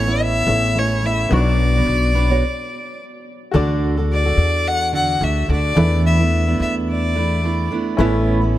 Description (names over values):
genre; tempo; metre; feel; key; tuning
pop; 108 BPM; 4/4; swing 55% on 16ths; D major; A4 = 440 Hz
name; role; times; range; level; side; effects
rich violin; melody; 0.0-7.7 s; C#5 to F#5; -21 LUFS; left 2 dB; tape echo
bright upright piano; accompaniment; 0.0-8.6 s; B3 to C#6; -27 LUFS; left 5 dB; none
fingerpicked steel-string acoustic guitar; accompaniment; 0.0-8.6 s; E2 to C#5; -21 LUFS; right 3 dB; none
upright bass; bass; 0.0-8.6 s; A1 to E2; -19 LUFS; left 1 dB; none
room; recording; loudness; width
light reverb, studio reverb; none; -15 LUFS; side -14 dB against mid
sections
0.0-3.5 A section; 3.5-8.6 B section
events
stop 2.4-3.5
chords
0.0 Aadd9; 1.3 Bmadd9; 3.5 D; 5.8 E7sus4; 8.0 Aadd9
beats
0.20 0.76 | 1.31 1.87 2.43 2.99 | 3.54 4.10 4.66 5.21 | 5.77 6.33 6.88 7.44 | 7.99 8.55